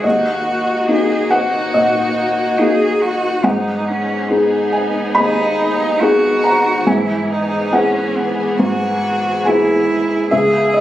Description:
neoclassical piano and strings; 70 BPM; 4/4; rubato; A4 = 440 Hz
rich cello; second line; 0.0-10.8 s; B3 to G#4; -19 LUFS; right 1 dB
felt-muted upright piano; accompaniment; 0.0-10.8 s; C#2 to B5; -16 LUFS; left 1 dB
rich studio string section; sustained chords; 0.0-10.8 s; E3 to G#4; -23 LUFS; equal
moderate recital hall reverb, RT60 1.6 s; recorded on a phone in the room, club ambience, compression; -13 LUFS; side -13 dB against mid
0.0-10.8 A section
0.0 D#m; 3.4 G#m; 6.9 Eadd9/G#
| 0.04 0.89 1.74 2.59 | 3.44 4.30 5.16 6.01 | 6.87 7.73 8.59 9.46 | 10.32

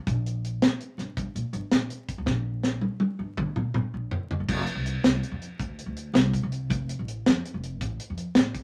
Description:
highlife guitar band; 108 BPM (dotted quarters); 12/8; straight; F major; A4 = 440 Hz
upright bass; bass; 0.0-8.5 s; F1 to Bb2; -33 LUFS; equal
tight funk drum kit; drums; 0.1-8.6 s; crash cymbal, hi-hat, kick drum, snare drum, toms; -27 LUFS; equal
moderate small room reverb, RT60 0.5 s; vinyl crackle; -28 LUFS; mono
0.0-4.5 A section; 4.5-8.6 B section
drum fill 2.3-4.5
| 0.07 0.62 1.18 1.73 | 2.28 2.83 3.39 3.94 | 4.49 5.04 5.60 6.15 | 6.70 7.26 7.81 8.36

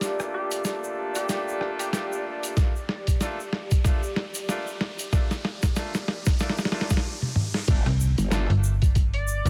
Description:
glitch hop; 94 BPM; 4/4; swing 58% on 16ths; G minor; A4 = 442 Hz
clear horn section; stabs; 0.0-8.5 s; A3 to A4; -36 LUFS; equal; vintage 12-bit sampler grit, sidechain pumping, low-pass filter, digital delay
boom bap sampler-style drum kit; drums; 0.0-9.5 s; crash cymbal, hi-hat, rim click, snare drum, toms; -31 LUFS; equal
egg shaker; percussion; 0.0-9.5 s; -40 LUFS; equal
riser and impact; sound effects; 1.0-9.5 s; -41 LUFS; equal
airy breathy pad; texture; 0.0-7.0 s; G4 to D5; -38 LUFS; equal; chorus, sidechain pumping
sync lead; melody; 0.3-2.1, 9.1-9.5 s; G4 to D5; -36 LUFS; equal; chorus, digital delay
electronic kick drum; drums; 2.6-9.1 s; -24 LUFS; equal
growl bass; bass; 7.7-8.5 s; G1; -28 LUFS; equal; chorus
slap-like FM bass; bass; 7.9-9.5 s; F1 to C2; -25 LUFS; equal
light reverb; -26 LUFS; mono
0.0-7.7 A section; 7.7-9.5 B section
build-up 0.0-7.7; drum fill 0.0-7.0, 7.2-7.7; filter sweep on horn section 0.0-7.7; riser 1.0-7.7; stop 7.0-7.7; drop 7.7-9.5; impact 7.7-9.5
0.0 Gm7
| 0.02 0.66 1.30 1.94 | 2.57 3.21 3.85 4.49 | 5.13 5.76 6.40 7.04 | 7.68 8.32 8.96

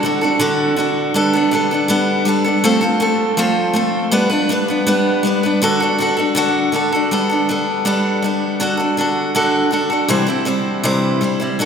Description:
country; 161 BPM; 4/4; straight; G major; A4 = 442 Hz
picked steel-string acoustic guitar; solo; 0.0-11.7 s; C3 to C5; -14 LUFS; equal
wet cathedral reverb, RT60 5.1 s; recorded in a church or concert hall; -14 LUFS; side -6 dB against mid
0.0-7.1 A section; 7.1-11.7 B section
0.0 D; 1.1 Gadd9; 2.6 F; 4.1 G; 5.6 D; 7.1 Gadd9; 8.6 D; 10.1 C
0.03 0.40 0.78 | 1.15 1.52 1.90 2.27 | 2.64 3.01 3.38 3.76 | 4.13 4.50 4.88 5.25 | 5.62 5.99 6.37 6.74 | 7.11 7.48 7.86 8.23 | 8.60 8.97 9.35 9.72 | 10.09 10.47 10.84 11.21 | 11.59

